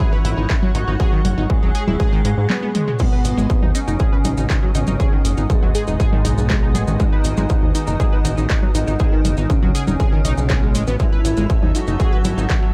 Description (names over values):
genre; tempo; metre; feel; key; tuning
melodic techno; 120 BPM; 4/4; straight; G# phrygian; A4 = 440 Hz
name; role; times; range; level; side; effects
expressive portamento lead; melody; 0.0-12.7 s; G#3 to G#4; -29 LUFS; equal; ensemble chorus, sidechain pumping, dub echo
airy dreamy lead; second line; 0.0-12.7 s; G#2 to G#3; -30 LUFS; equal; chorus, sidechain pumping
lush unison pad; sustained chords; 0.0-12.7 s; B3 to F#5; -35 LUFS; equal; chorus, vintage 12-bit sampler grit, sidechain pumping
tight sequenced synth; arpeggios; 0.0-12.7 s; D#3 to B4; -29 LUFS; equal; chorus, sidechain pumping, delay
electronic kick drum; drums; 0.0-12.6 s; none; -20 LUFS; equal; distortion
techno drum kit; drums; 0.0-12.6 s; congas, crash cymbal, handclaps, hi-hat, toms; -27 LUFS; equal; sidechain pumping on perc, sidechain pumping on hats, sidechain pumping on toms, sidechain pumping on cymbals
gritty driven synth bass; bass; 0.2-12.5 s; D#1 to G#2; -23 LUFS; equal; sidechain pumping
maracas; percussion; 3.0-12.6 s; none; -37 LUFS; equal; none
room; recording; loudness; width
digital ambience; none; -18 LUFS; mono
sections
0.0-12.7 A section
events
break 2.5-3.0; drum fill 2.5-3.0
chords
0.0 F#5; 3.0 G#m7; 11.0 Amaj7